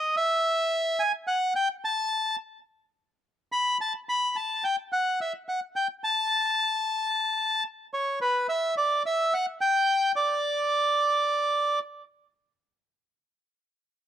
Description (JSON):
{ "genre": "tango", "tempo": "108 BPM", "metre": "4/4", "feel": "rubato", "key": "D major", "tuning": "A4 = 439 Hz", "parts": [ { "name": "bandoneon", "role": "solo", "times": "0.0-11.8 s", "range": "B4 to B5", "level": "-24 LUFS", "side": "equal", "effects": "none" } ], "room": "little or no reverb", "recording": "recorded outdoors, with no room sound", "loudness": "-24 LUFS", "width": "side -10 dB against mid", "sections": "0.0-12.4 A section; 12.4-14.1 B section", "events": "none", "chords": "none" }